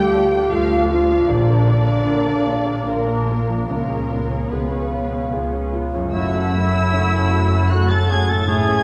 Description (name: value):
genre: cinematic, emotional film score for orchestra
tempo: 75 BPM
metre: 3/4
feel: uneven beats, rubato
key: unclear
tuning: A4 = 436 Hz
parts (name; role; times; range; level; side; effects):
- muted studio violin section; melody; 0.0-8.8 s; Bb4 to A6; -31 LUFS; equal; none
- muted symphonic violin section; second line; 0.0-8.8 s; F#4 to G5; -33 LUFS; equal; none
- muted symphonic viola section; accompaniment; 0.0-8.8 s; A3 to Bb4; -31 LUFS; equal; none
- warm grand piano; accompaniment; 0.0-8.8 s; Bb1 to D5; -28 LUFS; equal; none
- mellow French horn section; sustained chords; 0.0-8.8 s; E3 to G4; -25 LUFS; equal; none
- concert harp; arpeggios; 0.0-8.8 s; F#2 to D6; -30 LUFS; equal; none
- muted symphonic cello section; bass; 0.0-8.8 s; F#2 to G3; -28 LUFS; equal; none
- muted symphonic double bass section; bass; 0.0-8.8 s; F#1 to D2; -24 LUFS; equal; none
- mellow hollow silver concert flute; second line; 6.1-8.8 s; E5 to A5; -30 LUFS; equal; none
- warm clarinet; second line; 6.1-8.8 s; E4 to A4; -29 LUFS; equal; none
- warm oboe; second line; 6.1-8.8 s; E4 to A4; -28 LUFS; equal; none
room: wet scoring stage reverb, RT60 2.0 s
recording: heard from further back in the room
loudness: -19 LUFS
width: mono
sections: 0.0-6.1 A section; 6.1-8.8 B section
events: none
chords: 0.0 Dm; 1.3 Bb; 3.7 Db7; 6.1 F#m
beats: 0.52 | 1.29 2.07 2.87 | 3.69 4.51 5.33 | 6.14 6.93 7.71 | 8.48